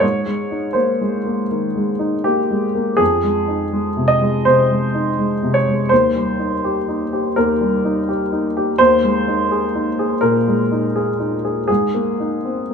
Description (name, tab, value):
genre	neoclassical minimalist piano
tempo	82 BPM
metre	4/4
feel	rubato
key	F minor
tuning	A4 = 438 Hz
part	warm baby grand piano	solo	0.0-12.7 s	Eb2 to Eb5	-16 LUFS	equal	none
room	moderate stone room reverb, RT60 1.1 s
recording	band playing live in one room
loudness	-15 LUFS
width	side -6 dB against mid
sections	0.0-12.7 A section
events	none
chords	0.0 Abadd9; 3.0 Fm7; 5.9 Cm7/Eb; 8.8 Ebsus4; 11.7 Abadd9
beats	| 0.03 0.77 1.52 2.25 | 3.00 3.73 4.46 5.18 | 5.91 6.63 7.36 8.08 | 8.79 9.51 10.22 10.95 | 11.69 12.45